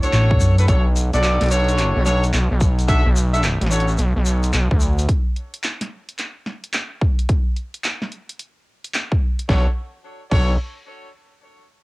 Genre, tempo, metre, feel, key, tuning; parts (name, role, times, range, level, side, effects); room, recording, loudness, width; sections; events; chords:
glitch hop; 109 BPM; 4/4; swing 64% on 16ths; B minor; A4 = 442 Hz
warm analog pad; sustained chords; 0.0-0.7 s; A3 to E4; -37 LUFS; right 2 dB
clear horn section; stabs; 0.0-3.9, 9.5-10.5 s; D4 to E5; -23 LUFS; equal; sidechain pumping, cassette tape, analog delay
hollow-body short-scale fingered electric bass; bass; 0.0-0.7 s; A1 to F#2; -15 LUFS; equal
dubstep drum kit; drums; 0.0-10.5 s; crash cymbal, handclaps, hi-hat, snare drum; -26 LUFS; equal; overdrive, cassette tape
shekere; percussion; 0.0-5.1 s; -31 LUFS; left 3 dB
electronic kick drum; drums; 0.3-10.5 s; -18 LUFS; equal; overdrive, cassette tape
gritty driven synth bass; bass; 0.7-5.1, 9.5-10.6 s; A1 to D2; -18 LUFS; equal; overdrive
digital ambience; home recording on cassette; -16 LUFS; side -22 dB against mid
0.7-9.5 A section; 9.5-11.7 B section
0.0 Bm9